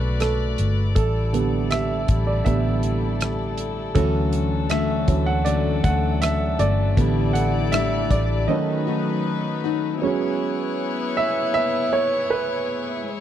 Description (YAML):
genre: pop ballad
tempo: 79 BPM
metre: 4/4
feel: straight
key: D major, E major from 10.0 s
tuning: A4 = 438 Hz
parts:
  - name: warm baby grand piano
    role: accompaniment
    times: 0.0-13.1 s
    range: C#3 to F#5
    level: -24 LUFS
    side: right 5 dB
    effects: none
  - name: warm studio string section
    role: sustained chords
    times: 0.0-13.2 s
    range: D3 to D5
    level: -28 LUFS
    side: left 5 dB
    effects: none
  - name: vintage muted fingered electric bass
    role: bass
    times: 0.0-8.5 s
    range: G1 to D2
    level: -23 LUFS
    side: equal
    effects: none
  - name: damped 70s drum kit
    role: drums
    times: 0.2-8.3 s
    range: hi-hat, kick drum, rim click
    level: -22 LUFS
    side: equal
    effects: none
  - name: picked steel-string acoustic guitar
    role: arpeggios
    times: 4.0-10.0 s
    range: A2 to F#4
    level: -27 LUFS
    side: left 14 dB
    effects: none
room: little or no reverb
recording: dry, close 1970s-style studio recording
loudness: -19 LUFS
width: side -10 dB against mid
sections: 0.0-10.0 A section; 10.0-13.2 B section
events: grand piano solo 0.0-10.0, 10.0-13.2; break 8.5-10.0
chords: 0.0 Bm7; 1.0 A7sus4; 4.0 Dmaj7; 7.0 A7sus4; 8.5 B7; 10.0 E6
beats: 0.21 | 0.97 1.72 2.46 3.21 | 3.96 4.71 5.46 6.22 | 6.97 7.73 8.49 9.26 | 10.03 10.79 11.55 12.31 | 13.06